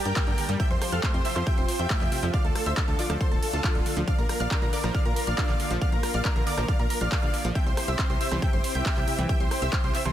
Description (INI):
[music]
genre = uplifting trance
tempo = 138 BPM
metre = 4/4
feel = straight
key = unclear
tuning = A4 = 443 Hz
[part]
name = dense compressed supersaw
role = melody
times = 0.0-10.1 s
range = F4 to G5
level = -31 LUFS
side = equal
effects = sidechain pumping, tape echo
[part]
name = wide unison pluck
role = second line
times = 0.0-10.1 s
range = A5 to G6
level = -37 LUFS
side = right 2 dB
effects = cassette tape, sidechain pumping, dub echo
[part]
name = lush unison pad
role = sustained chords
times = 0.0-10.1 s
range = F3 to A5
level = -35 LUFS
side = equal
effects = chorus, sidechain pumping
[part]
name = tight sequencer bass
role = bass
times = 0.1-10.1 s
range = D1 to Bb2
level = -29 LUFS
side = equal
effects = sidechain pumping
[part]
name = big-room dance drum kit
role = drums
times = 0.1-10.1 s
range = handclaps, hi-hat, rim click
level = -33 LUFS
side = equal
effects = overdrive, sidechain pumping on hats, sidechain pumping on cymbals
[part]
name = analog pluck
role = arpeggios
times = 0.2-10.1 s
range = C3 to D4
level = -35 LUFS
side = right 2 dB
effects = chorus, sidechain pumping, dub echo
[part]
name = electronic kick drum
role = drums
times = 0.2-9.8 s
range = none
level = -26 LUFS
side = equal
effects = overdrive
[sound]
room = digital ambience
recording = none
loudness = -23 LUFS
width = side -11 dB against mid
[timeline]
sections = 0.0-10.1 A section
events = none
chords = 0.0 Gmadd9; 0.6 Fadd9; 2.3 Dm; 4.1 Bb; 7.6 C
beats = 0.16 | 0.60 1.03 1.47 1.90 | 2.34 2.77 3.21 3.64 | 4.08 4.51 4.95 5.38 | 5.82 6.25 6.68 7.12 | 7.55 7.99 8.42 8.86 | 9.29 9.73